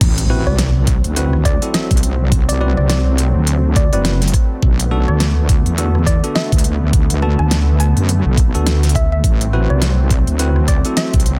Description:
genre	glitch hop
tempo	104 BPM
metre	4/4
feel	swing 58% on 16ths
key	A dorian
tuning	A4 = 438 Hz
part	warm analog pad	sustained chords	0.0-11.4 s	D3 to C4	-27 LUFS	equal	chorus, sidechain pumping
part	wobble bass	bass	0.0-11.4 s	F#1 to F#2	-17 LUFS	equal	chorus, tube saturation
part	electronic kick drum	drums	0.0-11.2 s	none	-17 LUFS	equal	none
part	pop drum kit	drums	0.0-11.4 s	crash cymbal, hi-hat, rim click, snare drum	-24 LUFS	equal	none
part	impact	sound effects	0.0-2.3 s	none	-27 LUFS	equal	none
part	bell-like tine electric piano	stabs	0.3-11.1 s	B3 to B4	-27 LUFS	equal	sidechain pumping, dub echo
part	woody wave-folded pluck	melody	0.5-11.1 s	D5 to A5	-29 LUFS	equal	chorus, dub echo
room	digital ambience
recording	dense, heavily limited modern master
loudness	-15 LUFS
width	mono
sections	0.0-11.4 A section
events	drop 0.0-11.4; impact 0.0-2.3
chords	0.0 Am69; 4.6 Bm7; 9.2 Am69

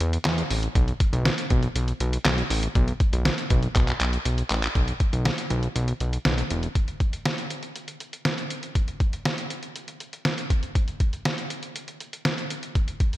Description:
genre	synth-pop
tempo	120 BPM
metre	4/4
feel	straight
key	unclear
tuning	A4 = 439 Hz
part	fat analog bass	bass	0.0-6.7 s	E1 to E2	-24 LUFS	equal	none
part	trip hop sampler-style drum kit	drums	0.0-13.2 s	handclaps, hi-hat, kick drum, snare drum	-24 LUFS	equal	none
room	light reverb, digital ambience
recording	none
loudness	-23 LUFS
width	side -16 dB against mid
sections	0.0-4.8 A section; 4.8-6.8 B section; 6.8-13.2 C section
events	drum fill 3.8-4.8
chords	none

